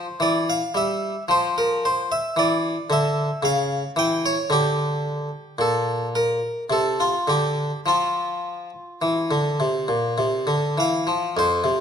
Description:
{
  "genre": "classical, baroque-style suite movement for harpsichord",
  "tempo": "50-56 BPM",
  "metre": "3/4",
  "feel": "rubato",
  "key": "F major",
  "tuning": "A4 = 440 Hz",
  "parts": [
    { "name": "harpsichord", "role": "solo", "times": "0.0-11.8 s", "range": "F2 to G5", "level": "-20 LUFS", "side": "equal", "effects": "none" }
  ],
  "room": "moderate recital hall reverb, RT60 1.3 s",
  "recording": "close, detailed microphones",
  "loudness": "-20 LUFS",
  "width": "side -8 dB against mid",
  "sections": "0.0-11.4 A section",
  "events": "none",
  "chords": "0.2 Em7; 1.3 Dm9; 3.4 C#dim; 4.5 N.C.; 6.7 C5; 7.9 F5",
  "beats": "0.20 | 1.29 2.36 3.43 | 4.50 5.59 6.70 | 7.86 9.02 10.19 | 11.36"
}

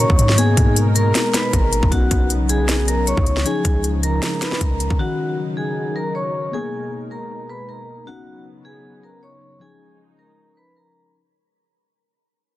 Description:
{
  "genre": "hip hop, trap",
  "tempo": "156 BPM",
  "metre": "4/4",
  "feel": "half-time",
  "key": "unclear",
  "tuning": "A4 = 440 Hz",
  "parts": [
    { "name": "vibraphone with medium mallets", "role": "melody", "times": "0.0-11.1 s", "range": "F#4 to Db6", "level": "-24 LUFS", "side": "equal", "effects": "none" },
    { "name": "muted felt-like synth keys", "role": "accompaniment", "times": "0.0-11.2 s", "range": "Eb3 to Ab4", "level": "-27 LUFS", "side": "left 5 dB", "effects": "chorus" },
    { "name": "warm analog pad", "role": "sustained chords", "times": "0.0-11.1 s", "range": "Cb3 to Bb4", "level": "-28 LUFS", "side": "right 1 dB", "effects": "chorus" },
    { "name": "warm 808-style bass", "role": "bass", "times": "0.0-5.0 s", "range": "Ab1 to Ab2", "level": "-19 LUFS", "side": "equal", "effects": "none" },
    { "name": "trap drum kit", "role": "drums", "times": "0.0-5.0 s", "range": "finger snaps, hi-hat, kick drum, snare drum", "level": "-19 LUFS", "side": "equal", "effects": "soft clipping on snare" }
  ],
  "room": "little or no reverb",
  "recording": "dense, heavily limited modern master, lossy compression artefacts",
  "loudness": "-16 LUFS",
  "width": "side -15 dB against mid",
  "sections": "0.0-11.1 A section",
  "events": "fade-out 0.0-11.1",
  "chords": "0.4 Abmadd9; 1.9 Badd9; 3.5 Dbadd9; 5.0 Ebm7; 6.5 Abmadd9; 8.1 Badd9; 9.6 Dbadd9",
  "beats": "| 0.38 0.76 1.15 1.53 | 1.92 2.30 2.69 3.07 | 3.46 3.84 4.22 4.61 | 5.00 5.38 5.76 6.15 | 6.53 6.92 7.30 7.69 | 8.07 8.46 8.84 9.22 | 9.61 9.99 10.38 10.76"
}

